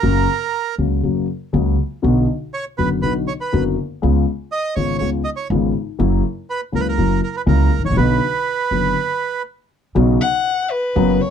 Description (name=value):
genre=tango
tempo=121 BPM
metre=4/4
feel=rubato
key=B minor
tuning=A4 = 440 Hz
part: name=bandoneon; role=melody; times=0.0-9.4 s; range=A#4 to D#5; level=-21 LUFS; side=right 6 dB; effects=none
part: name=dark concert grand piano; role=accompaniment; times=0.0-11.2 s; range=F#1 to F#4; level=-18 LUFS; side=left 4 dB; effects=none
part: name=upright bass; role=bass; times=0.0-11.2 s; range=F#1 to C#2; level=-20 LUFS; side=right 2 dB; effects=none
part: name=warm violin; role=second line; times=10.2-11.3 s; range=B4 to F#5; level=-18 LUFS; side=left 4 dB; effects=none
room=light reverb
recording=dark, warm production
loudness=-16 LUFS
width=side -8 dB against mid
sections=0.0-10.0 A section; 10.0-11.3 B section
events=stop 9.0-10.0; violin solo 10.0-11.3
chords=0.0 F#; 2.0 Bm; 4.0 C#7; 6.0 F#7; 8.0 Bm; 10.0 Bsus2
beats=| 0.04 0.54 1.04 1.54 | 2.04 2.54 3.03 3.53 | 4.02 4.51 5.01 5.50 | 5.99 6.49 6.98 7.47 | 7.97 8.46 8.96 9.46 | 9.96 10.46 10.96